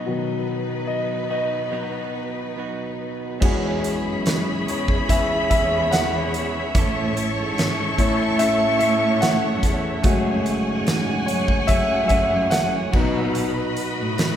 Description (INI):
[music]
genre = pop ballad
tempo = 72 BPM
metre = 4/4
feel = straight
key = E major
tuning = A4 = 440 Hz
[part]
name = warm concert grand piano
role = accompaniment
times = 0.0-14.4 s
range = B2 to F#5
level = -23 LUFS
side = left 2 dB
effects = none
[part]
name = clear studio string section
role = sustained chords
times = 0.0-14.4 s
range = F#3 to C#6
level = -27 LUFS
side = left 1 dB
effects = none
[part]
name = direct-recorded clean electric guitar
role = arpeggios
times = 0.0-14.4 s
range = F#2 to A4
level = -30 LUFS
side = right 4 dB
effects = none
[part]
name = clear studio cello section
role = bass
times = 3.4-14.4 s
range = E2 to B2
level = -27 LUFS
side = right 1 dB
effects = none
[part]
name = huge arena drum kit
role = drums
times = 3.4-14.4 s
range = crash cymbal, hi-hat, kick drum, snare drum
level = -24 LUFS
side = equal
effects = none
[sound]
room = wet concert hall reverb, RT60 2.2 s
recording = recorded in a church or concert hall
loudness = -19 LUFS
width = side -10 dB against mid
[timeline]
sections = 0.0-3.4 A section; 3.4-14.4 B section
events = grand piano solo 0.0-3.4, 3.4-14.4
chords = 0.0 B; 3.4 E6; 6.7 A; 10.0 F#madd9; 12.9 B